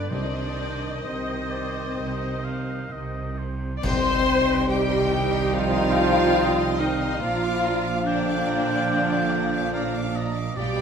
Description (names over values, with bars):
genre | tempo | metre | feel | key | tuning
classical, slow romantic movement for symphony orchestra | 63-74 BPM | 4/4 | rubato | C minor | A4 = 440 Hz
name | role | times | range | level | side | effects
clear studio violin section | melody | 0.0-10.8 s | C5 to C6 | -32 LUFS | left 4 dB | none
warm oboe | second line | 0.0-10.8 s | B4 to G5 | -32 LUFS | equal | none
warm studio violin section | second line | 0.0-10.8 s | C4 to D6 | -35 LUFS | equal | none
dark bassoon | accompaniment | 0.0-10.8 s | D3 to G3 | -34 LUFS | equal | none
rich studio viola section | accompaniment | 0.0-10.8 s | D4 to Eb5 | -27 LUFS | right 1 dB | none
mellow hollow silver concert flute | second line | 0.1-10.8 s | Eb5 to G6 | -37 LUFS | left 1 dB | none
warm French horn section | sustained chords | 0.1-10.8 s | D3 to C4 | -29 LUFS | left 6 dB | none
rich studio cello section | bass | 0.1-10.8 s | Bb2 to C3 | -32 LUFS | right 3 dB | none
rich studio double bass section | bass | 0.1-10.8 s | Bb1 to C2 | -31 LUFS | right 4 dB | none
timpani | percussion | 0.1-5.1 s | C3 | -34 LUFS | left 1 dB | none
bright trombone section | sustained chords | 3.8-10.8 s | Eb3 to Eb4 | -30 LUFS | right 2 dB | none
dark trumpet | stabs | 3.8-10.8 s | F5 to G5 | -32 LUFS | right 1 dB | none
clash cymbals and concert bass drum | percussion | 3.8-5.5 s | none | -33 LUFS | left 1 dB | none
room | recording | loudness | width
moderate recital hall reverb, RT60 1.4 s | none | -21 LUFS | side -7 dB against mid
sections
0.0-3.8 A section; 3.8-10.8 A section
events
band accent 3.8-4.7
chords
0.1 Cm; 7.2 Bb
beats
| 0.11 1.04 1.97 2.91 | 3.83 4.69 5.54 6.38 | 7.21 8.07 8.92 9.75 | 10.57